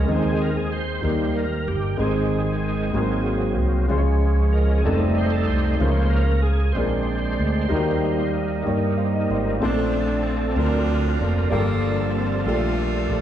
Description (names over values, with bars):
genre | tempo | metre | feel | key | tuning
slow gospel | 63 BPM (dotted quarters) | 6/8 | straight | Ab major, Bb major from 9.6 s | A4 = 440 Hz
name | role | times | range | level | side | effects
warm upright piano | accompaniment | 0.0-13.2 s | G2 to F5 | -26 LUFS | left 2 dB | none
overdriven tonewheel organ | sustained chords | 0.0-13.2 s | D3 to C5 | -24 LUFS | right 2 dB | slow rotary speaker, chorus vibrato
fingered electric bass | bass | 0.0-13.2 s | F1 to G2 | -22 LUFS | equal | none
warm saxophone section | melody | 9.6-13.2 s | D3 to F4 | -26 LUFS | left 2 dB | none
room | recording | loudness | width
wet scoring stage reverb, RT60 2.1 s | recorded in a church or concert hall, small room ambience | -19 LUFS | side -10 dB against mid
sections
0.0-9.6 A section; 9.6-13.2 B section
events
tonewheel organ solo 0.0-9.6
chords
0.1 Ab/Eb; 1.0 Eb; 2.0 Ab; 2.9 Ab7; 3.9 Db; 4.8 F7; 5.8 Bbm/Db; 6.8 Bb7; 7.7 Eb; 9.6 Bbmaj9; 10.6 D7alt; 11.5 Gm9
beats
| 0.08 1.03 | 1.99 2.94 | 3.90 4.85 | 5.80 6.75 | 7.71 8.66 | 9.61 10.56 | 11.51 12.46